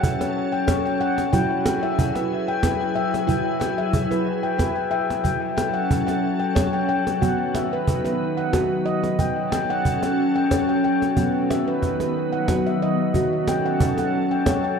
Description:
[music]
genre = world meditative, meditative tuned percussion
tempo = 91 BPM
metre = 3/4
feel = swing 54% on 16ths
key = F# dorian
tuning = A4 = 442 Hz
[part]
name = soft additive organ-like pad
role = sustained chords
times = 0.0-14.8 s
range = D#3 to A4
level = -24 LUFS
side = equal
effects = ensemble chorus, built-in reverb
[part]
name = handpan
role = arpeggios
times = 0.0-14.8 s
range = F#3 to G5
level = -23 LUFS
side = left 1 dB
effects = tape echo
[part]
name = cajon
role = percussion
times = 0.0-14.6 s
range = none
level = -25 LUFS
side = right 2 dB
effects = none
[sound]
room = wet echo chamber reverb, RT60 1.4 s, small room ambience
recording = dark, warm production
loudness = -20 LUFS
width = side -6 dB against mid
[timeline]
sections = 0.0-5.2 A section; 5.2-14.8 B section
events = none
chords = 0.0 F#m; 1.3 E/F#; 5.2 F#m; 7.2 B; 9.2 F#m; 11.2 B; 13.1 F#m

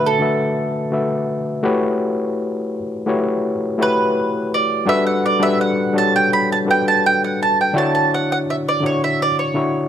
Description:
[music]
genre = soul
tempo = 84 BPM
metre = 4/4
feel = straight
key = D major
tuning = A4 = 440 Hz
[part]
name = mandolin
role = melody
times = 0.0-9.9 s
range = A4 to B5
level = -18 LUFS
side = right 3 dB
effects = none
[part]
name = overdriven reed electric piano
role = accompaniment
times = 0.0-9.9 s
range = D3 to E5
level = -18 LUFS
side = left 2 dB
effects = none
[sound]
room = light reverb, studio reverb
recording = none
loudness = -16 LUFS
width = side -9 dB against mid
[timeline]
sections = 0.0-9.9 A section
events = mandolin solo 0.0-9.9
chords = 0.0 D6; 1.6 A13; 4.9 Gmaj7; 7.7 Dmaj7

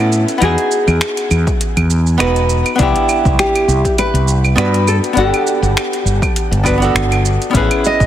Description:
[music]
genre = sunset chillout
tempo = 101 BPM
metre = 4/4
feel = swing 55% on 16ths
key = unclear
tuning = A4 = 441 Hz
[part]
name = nylon-string guitar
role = melody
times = 0.0-8.1 s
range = E4 to D#5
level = -19 LUFS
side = equal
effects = ping-pong delay, shimmer reverb
[part]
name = archtop guitar, miked and amplified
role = accompaniment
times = 0.0-8.1 s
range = B3 to F#5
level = -17 LUFS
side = moving between left 4 dB and right 3 dB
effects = auto-pan, ping-pong delay, shimmer reverb
[part]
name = mellow fretless electric bass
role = bass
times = 0.0-8.1 s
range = E1 to A2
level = -14 LUFS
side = equal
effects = none
[part]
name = deep house drum kit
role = drums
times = 0.1-8.1 s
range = claves, finger snaps, hi-hat, shaker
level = -20 LUFS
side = right 2 dB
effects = overdrive
[part]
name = electronic kick drum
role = drums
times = 1.5-8.1 s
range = none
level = -18 LUFS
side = equal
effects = overdrive
[sound]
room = moderate lush hall reverb, RT60 1.7 s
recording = heavily compressed radio sound, multiband compression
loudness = -12 LUFS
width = side -11 dB against mid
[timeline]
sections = 0.0-8.1 A section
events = none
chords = 0.4 Emaj9; 2.8 Cmaj9; 4.9 Gmaj9; 7.5 Amaj9

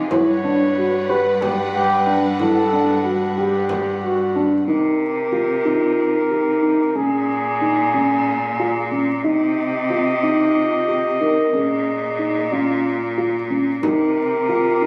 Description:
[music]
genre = contemporary instrumental, chamber music in an uneven meter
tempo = 184 BPM (eighths)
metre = 7/8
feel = straight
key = C phrygian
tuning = A4 = 440 Hz
[part]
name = dark symphonic string section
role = sustained chords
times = 0.0-4.6 s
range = G3 to F#5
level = -28 LUFS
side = equal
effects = none
[part]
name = bright cello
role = bass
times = 0.0-14.9 s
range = G2 to C3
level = -27 LUFS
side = equal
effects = none
[part]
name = mellow flugelhorn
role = melody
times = 0.1-14.9 s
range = F4 to Eb5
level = -24 LUFS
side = equal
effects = none
[part]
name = felt-muted upright piano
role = arpeggios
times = 0.1-14.9 s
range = Db4 to G4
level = -23 LUFS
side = equal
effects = none
[part]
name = frame drum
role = percussion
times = 0.1-4.5, 13.8-14.6 s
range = none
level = -33 LUFS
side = equal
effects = none
[part]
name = vibraphone with soft mallets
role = second line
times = 5.3-14.9 s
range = C4 to Bb4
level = -25 LUFS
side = equal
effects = none
[sound]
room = moderate scoring stage reverb, RT60 2.0 s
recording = recorded on a phone in the room, club reverb, compression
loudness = -19 LUFS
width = mono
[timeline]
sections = 0.0-4.7 A section; 4.7-14.9 B section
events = none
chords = 0.1 Gmaj7; 4.7 Cm7; 7.0 Bbm7; 9.2 Cm; 11.5 Bbm7; 13.8 Cm7

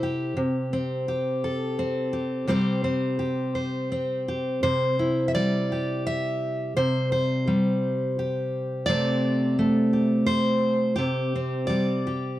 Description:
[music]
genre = folk, solo fingerstyle acoustic guitar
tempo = 85 BPM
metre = 3/4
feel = rubato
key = C major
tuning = A4 = 438 Hz
[part]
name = fingerpicked steel-string acoustic guitar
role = solo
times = 0.0-12.4 s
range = C3 to E5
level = -23 LUFS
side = equal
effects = none
[sound]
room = light reverb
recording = dark, warm production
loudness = -23 LUFS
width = side -14 dB against mid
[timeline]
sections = 0.0-4.6 A section; 4.6-12.4 B section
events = none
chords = 0.4 Am7/C; 2.5 Gsus4/C; 4.6 Cadd9; 8.9 Gsus24/C; 11.0 Gsus4/C

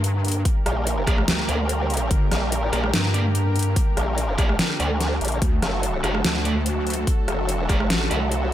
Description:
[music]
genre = heavy wobble dubstep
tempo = 145 BPM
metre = 4/4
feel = half-time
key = G harmonic minor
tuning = A4 = 440 Hz
[part]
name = lush unison pad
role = sustained chords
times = 0.0-8.5 s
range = D3 to Bb4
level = -28 LUFS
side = equal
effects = chorus, sidechain pumping
[part]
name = wobble bass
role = bass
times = 0.0-8.1 s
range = G1 to G2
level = -23 LUFS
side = equal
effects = chorus, overdrive
[part]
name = dubstep drum kit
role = drums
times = 0.0-8.4 s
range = hi-hat, rim click, snare drum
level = -25 LUFS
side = equal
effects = overdrive
[part]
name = electronic kick drum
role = drums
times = 0.5-7.8 s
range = none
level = -21 LUFS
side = equal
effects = overdrive
[part]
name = formant-sweep wobble bass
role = bass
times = 0.7-8.5 s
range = F#1 to D2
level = -24 LUFS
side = equal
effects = chorus, overdrive
[part]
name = thick fuzz guitar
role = stabs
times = 1.1-8.2 s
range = A3 to D5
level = -30 LUFS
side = right 2 dB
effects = distortion, tape echo
[sound]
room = digital ambience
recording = none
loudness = -20 LUFS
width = side -12 dB against mid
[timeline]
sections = 0.0-8.5 A section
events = none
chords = 0.0 Gm; 5.4 D

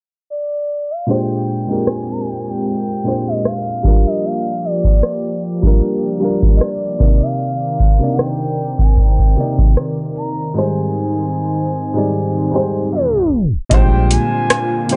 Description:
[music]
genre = contemporary R&B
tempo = 76 BPM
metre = 4/4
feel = swing 54% on 16ths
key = unclear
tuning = A4 = 440 Hz
[part]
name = gliding portamento lead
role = melody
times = 0.3-15.0 s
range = D5 to Bb5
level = -26 LUFS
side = equal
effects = chorus
[part]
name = warm baby grand piano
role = accompaniment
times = 1.1-15.0 s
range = Ab2 to G5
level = -22 LUFS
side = equal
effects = none
[part]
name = warm analog pad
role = sustained chords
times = 1.1-15.0 s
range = D3 to D5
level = -25 LUFS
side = equal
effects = chorus, tremolo
[part]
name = booming analog drum machine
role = drums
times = 1.9-15.0 s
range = hi-hat, kick drum, rim click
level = -14 LUFS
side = equal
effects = none
[part]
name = warm sub bass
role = bass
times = 13.7-14.2 s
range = Bb1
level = -18 LUFS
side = equal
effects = none
[sound]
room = little or no reverb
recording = dry, gritty hardware recording, cassette tape, low-pass filter, tape stop, nothing above 10.7 kHz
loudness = -17 LUFS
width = mono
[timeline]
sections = 0.0-1.1 A section; 1.1-13.7 B section; 13.7-15.0 C section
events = filter sweep 1.1-13.7; drums muted 10.6-13.7; grand piano fill 12.1-13.7; tape stop 12.9-13.7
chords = 0.0 N.C.; 1.1 Bb13; 3.8 Gm7; 7.0 Cm9; 10.6 Abmaj7; 13.7 Bb13

